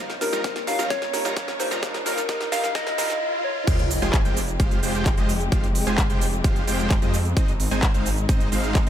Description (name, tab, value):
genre	EDM, festival progressive house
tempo	130 BPM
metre	4/4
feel	straight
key	F minor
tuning	A4 = 440 Hz
part	dark studio string section	sustained chords	0.0-8.9 s	Bb2 to Db5	-33 LUFS	left 2 dB	sidechain pumping
part	dense compressed supersaw	riff	0.0-8.9 s	G3 to Bb5	-28 LUFS	right 1 dB	sidechain pumping, ping-pong delay
part	riser, swell and sub drop	sound effects	0.0-5.5 s	none	-32 LUFS	right 1 dB	none
part	big-room dance drum kit	drums	0.1-8.9 s	crash cymbal, handclaps, hi-hat, shaker, snare drum	-30 LUFS	right 1 dB	high-pass filter on snare, high-pass filter on hats, high-pass filter on perc, high-pass filter on cymbals
part	soft struck synth lead	melody	0.2-3.7 s	Bb4 to F5	-28 LUFS	left 2 dB	chorus, ping-pong delay
part	dark concert grand piano	accompaniment	0.2-3.1 s	G2 to Bb4	-33 LUFS	right 5 dB	vintage 12-bit sampler grit, sidechain pumping, ping-pong delay
part	electronic kick drum	drums	0.4-8.8 s	none	-21 LUFS	equal	none
part	wide detuned saw bass	bass	3.7-8.9 s	F1 to F2	-27 LUFS	equal	chorus, sidechain pumping
room	light reverb, digital ambience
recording	high-pass filter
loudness	-20 LUFS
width	side -10 dB against mid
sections	0.0-3.7 A section; 3.7-8.9 B section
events	build-up 0.0-3.7; drum fill 0.0-3.2; riser 0.0-3.7; swell 2.8-3.7; drop 3.7-8.9; impact 3.7-5.5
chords	0.0 Bbm; 3.7 Fmadd9; 7.4 Ab